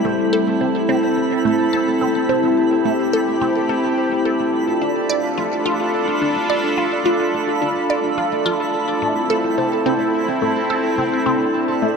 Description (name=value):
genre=ambient, sequencer-driven space music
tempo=107 BPM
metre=4/4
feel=straight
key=A minor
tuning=A4 = 440 Hz
part: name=sweeping resonant pad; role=sustained chords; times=0.0-12.0 s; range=C4 to A4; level=-20 LUFS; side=equal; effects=chorus
part: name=concert harp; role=arpeggios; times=0.0-12.0 s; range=A3 to D5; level=-22 LUFS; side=left 1 dB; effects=auto-pan, tape echo
part: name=twinkling granular texture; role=texture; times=0.0-12.0 s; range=B5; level=-30 LUFS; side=equal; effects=built-in reverb
part: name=resonant blip pluck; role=riff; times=0.1-12.0 s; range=A3 to D5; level=-23 LUFS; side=right 1 dB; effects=phaser, tape echo
room=wet huge ambient reverb, RT60 8.6 s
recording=dark, warm production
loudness=-16 LUFS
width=side -5 dB against mid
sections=0.0-12.0 A section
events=none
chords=0.0 Am; 4.5 Dm; 9.0 Am